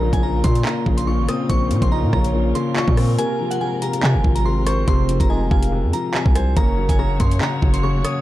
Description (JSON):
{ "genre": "hip hop, drill", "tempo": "142 BPM", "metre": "4/4", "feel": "half-time", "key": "F phrygian", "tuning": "A4 = 441 Hz", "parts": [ { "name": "glassy synth bell", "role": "melody", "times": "0.0-8.2 s", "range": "Gb5 to Eb6", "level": "-27 LUFS", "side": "right 2 dB", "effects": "chorus" }, { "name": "soft octave-layered synth lead", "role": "second line", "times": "0.0-7.0 s", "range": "Bb4 to F5", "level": "-29 LUFS", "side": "right 2 dB", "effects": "chorus, ping-pong delay" }, { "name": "felt-muted upright piano", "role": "accompaniment", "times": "0.0-8.2 s", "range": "Bb2 to Db5", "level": "-24 LUFS", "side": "left 4 dB", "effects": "none" }, { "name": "dark studio string section", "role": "sustained chords", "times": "0.0-8.2 s", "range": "C3 to Db5", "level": "-28 LUFS", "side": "right 1 dB", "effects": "none" }, { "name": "distorted 808-style bass", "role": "bass", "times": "0.0-8.0 s", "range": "F1 to C3", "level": "-20 LUFS", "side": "equal", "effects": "distortion" }, { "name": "drill drum kit", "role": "drums", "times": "0.1-8.2 s", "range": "handclaps, hi-hat, kick drum, rim click", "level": "-20 LUFS", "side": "equal", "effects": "none" } ], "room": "digital ambience", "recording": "dark, warm production", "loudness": "-16 LUFS", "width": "side -15 dB against mid", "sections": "0.0-8.2 A section", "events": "break 3.2-4.0", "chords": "0.0 Bbmadd9; 3.2 Fm; 6.6 Gb", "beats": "0.23 0.65 1.07 | 1.50 1.92 2.34 2.76 | 3.19 3.61 4.03 4.45 | 4.88 5.30 5.72 6.14 | 6.57 6.99 7.41 7.83" }